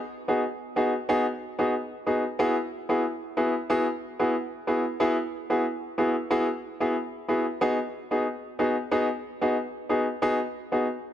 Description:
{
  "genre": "dancehall",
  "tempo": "92 BPM",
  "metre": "4/4",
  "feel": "straight",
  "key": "G# minor",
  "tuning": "A4 = 441 Hz",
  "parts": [
    { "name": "bright concert grand piano", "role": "solo", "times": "0.3-10.9 s", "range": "B3 to G#4", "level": "-25 LUFS", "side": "equal", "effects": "none" }
  ],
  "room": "light reverb, studio reverb",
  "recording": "dark, warm production",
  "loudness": "-25 LUFS",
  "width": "side -11 dB against mid",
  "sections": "0.0-11.1 A section",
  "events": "none",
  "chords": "0.0 G#m7; 2.4 Eadd9; 7.6 G#m7"
}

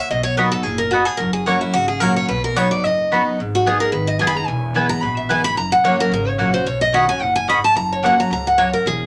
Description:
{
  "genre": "bluegrass",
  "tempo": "220 BPM",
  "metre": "4/4",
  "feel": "swing 55% on 8ths",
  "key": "B major",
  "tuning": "A4 = 437 Hz",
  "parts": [
    { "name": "picked steel-string acoustic guitar", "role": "melody", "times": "0.0-9.1 s", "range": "E4 to B5", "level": "-21 LUFS", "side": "equal", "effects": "none" },
    { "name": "picked steel-string acoustic guitar", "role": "accompaniment", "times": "0.0-9.1 s", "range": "E2 to G#4", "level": "-25 LUFS", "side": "equal", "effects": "none" },
    { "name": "upright bass", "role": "bass", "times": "0.1-9.1 s", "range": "E1 to C#2", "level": "-30 LUFS", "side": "equal", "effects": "none" },
    { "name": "mandolin", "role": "stabs", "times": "0.4-8.7 s", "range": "A#3 to B5", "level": "-22 LUFS", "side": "equal", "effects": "none" }
  ],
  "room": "wet small room reverb, RT60 0.6 s",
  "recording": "none",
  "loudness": "-18 LUFS",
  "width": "mono",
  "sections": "0.0-9.1 A section",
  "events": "steel-string acoustic guitar solo 0.0-9.1",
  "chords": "0.1 B; 1.2 F#; 2.3 B; 3.4 G#m; 4.5 E; 5.6 F#; 6.7 Badd9; 7.8 F#"
}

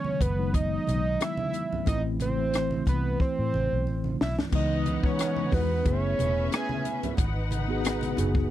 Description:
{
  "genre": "lush 1970s-style soul",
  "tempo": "90 BPM",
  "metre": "4/4",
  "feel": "swing 54% on 16ths",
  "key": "unclear",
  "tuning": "A4 = 441 Hz",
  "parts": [
    { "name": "fat analog lead", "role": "melody", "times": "0.0-7.0 s", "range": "B4 to G#5", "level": "-30 LUFS", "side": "right 3 dB", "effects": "none" },
    { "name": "mellow tine electric piano", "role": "accompaniment", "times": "0.0-8.5 s", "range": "D#3 to G#4", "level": "-30 LUFS", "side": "left 2 dB", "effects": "medium stereo tremolo" },
    { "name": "congas", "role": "percussion", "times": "0.0-8.3 s", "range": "none", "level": "-36 LUFS", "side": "right 4 dB", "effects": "none" },
    { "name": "vintage muted fingered electric bass", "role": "bass", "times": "0.2-8.5 s", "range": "E1 to A2", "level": "-29 LUFS", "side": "equal", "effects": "none" },
    { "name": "compact cocktail drum kit", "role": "drums", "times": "0.2-8.5 s", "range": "crash cymbal, hi-hat, kick drum, rim click, snare drum", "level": "-28 LUFS", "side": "equal", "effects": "none" },
    { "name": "dark studio string section", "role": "second line", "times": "4.5-8.5 s", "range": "C#4 to F#5", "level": "-35 LUFS", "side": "left 3 dB", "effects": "none" }
  ],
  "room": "little or no reverb",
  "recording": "dry, close 1970s-style studio recording",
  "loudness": "-24 LUFS",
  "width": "side -13 dB against mid",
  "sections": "0.0-4.5 A section; 4.5-8.5 B section",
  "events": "drum fill 3.2-4.5",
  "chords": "0.0 Emaj9; 1.9 Am; 4.5 C#m9; 5.9 F#m11; 7.2 G#m7"
}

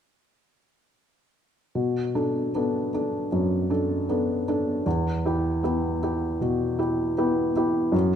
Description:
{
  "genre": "neoclassical minimalist piano",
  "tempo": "77 BPM",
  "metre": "4/4",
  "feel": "rubato",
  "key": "B minor",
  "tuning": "A4 = 439 Hz",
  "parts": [
    { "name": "felt-muted upright piano", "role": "solo", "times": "1.8-8.2 s", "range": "E2 to A4", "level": "-23 LUFS", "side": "equal", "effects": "none" }
  ],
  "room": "moderate recital hall reverb, RT60 1.7 s",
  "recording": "minimal, uncompressed stereo recording",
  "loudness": "-23 LUFS",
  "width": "side -8 dB against mid",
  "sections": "1.7-8.2 A section",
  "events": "none",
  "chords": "1.7 Bm7; 4.9 Em"
}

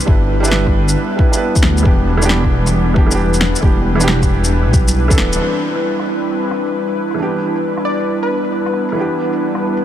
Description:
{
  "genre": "future garage",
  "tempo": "135 BPM",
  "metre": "4/4",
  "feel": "swing 67% on 16ths",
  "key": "E minor",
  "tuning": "A4 = 441 Hz",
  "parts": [
    { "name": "felt-muted upright piano", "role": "accompaniment", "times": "0.0-9.8 s", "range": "E3 to B4", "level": "-20 LUFS", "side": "right 3 dB", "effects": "sidechain pumping, tape echo" },
    { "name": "airy breathy pad", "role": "sustained chords", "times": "0.0-9.8 s", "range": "G3 to B4", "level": "-19 LUFS", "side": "equal", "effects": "chorus, vintage 12-bit sampler grit, sidechain pumping" },
    { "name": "electronic shaker, snare drum and rim click", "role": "drums", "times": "0.0-9.8 s", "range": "none", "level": "-22 LUFS", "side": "equal", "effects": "low-pass filter on perc, small room ambience, low-pass filter on snare" },
    { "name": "dark detuned saw bass", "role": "bass", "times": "0.1-5.4 s", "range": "D1 to D2", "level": "-16 LUFS", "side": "equal", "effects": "sidechain pumping" },
    { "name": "electronic kick drum", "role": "drums", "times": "0.1-5.2 s", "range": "none", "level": "-14 LUFS", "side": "equal", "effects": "small room ambience" },
    { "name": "plucky unison lead", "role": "melody", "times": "7.8-8.8 s", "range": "B4 to D5", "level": "-23 LUFS", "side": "left 1 dB", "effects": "vintage 12-bit sampler grit, tape echo" }
  ],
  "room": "light reverb, digital ambience",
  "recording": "none",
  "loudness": "-13 LUFS",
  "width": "side -11 dB against mid",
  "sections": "0.0-5.4 A section; 5.4-9.8 B section",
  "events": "band accent 5.2",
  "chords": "0.1 G6; 1.9 Em7; 5.4 Cmaj9; 7.2 Em7"
}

